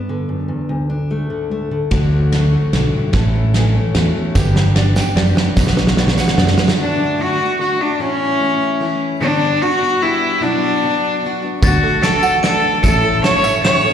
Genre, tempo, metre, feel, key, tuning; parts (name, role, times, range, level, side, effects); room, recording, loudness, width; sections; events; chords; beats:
indie folk with a building arrangement; 149 BPM; 3/4; straight; D major; A4 = 440 Hz
fingerpicked steel-string acoustic guitar; accompaniment; 0.0-4.4 s; D2 to F#4; -20 LUFS; left 1 dB; slapback echo
picked plugged-in steel-string acoustic guitar; accompaniment; 1.9-13.9 s; G2 to A4; -23 LUFS; left 5 dB; slapback echo
fingered electric bass; bass; 1.9-6.5, 11.6-13.0 s; G1 to F#2; -15 LUFS; right 1 dB
loose indie drum kit; drums; 1.9-6.8, 11.6-13.7 s; hi-hat, kick drum, ride cymbal, snare drum; -18 LUFS; right 2 dB
felt-muted upright piano; accompaniment; 4.3-6.8, 11.6-13.9 s; G1 to G5; -26 LUFS; right 2 dB; slapback echo
ukulele; arpeggios; 4.4-6.8, 11.6-13.9 s; E4 to G5; -24 LUFS; right 6 dB; slapback echo
tambourine; percussion; 4.4-6.5, 11.6-13.7 s; -34 LUFS; right 3 dB
rich cello; melody; 6.8-13.9 s; C#4 to C#5; -16 LUFS; equal; slapback echo, analog delay
glockenspiel with brass mallets; second line; 11.6-13.9 s; A6 to E7; -20 LUFS; left 2 dB; slapback echo, analog delay
light reverb, small room ambience; live gig heard through the venue's PA, recital hall reverb; -13 LUFS; side -9 dB against mid
0.0-1.9 A section; 1.9-6.8 B section; 6.8-13.9 C section
build-up 1.9-6.8; drum fill 1.9-6.8
0.0 G; 0.7 D5; 1.9 D; 3.1 A; 4.4 G; 5.6 Bm; 6.8 D; 8.0 A; 9.2 G; 10.4 Bm; 11.6 D; 12.8 A
0.29 | 0.70 1.11 1.52 | 1.92 2.33 2.74 | 3.14 3.55 3.95 | 4.36 4.76 5.17 | 5.57 5.98 6.38 | 6.78 7.19 7.59 | 7.99 8.40 8.80 | 9.21 9.61 10.01 | 10.41 10.82 11.22 | 11.63 12.03 12.43 | 12.84 13.24 13.64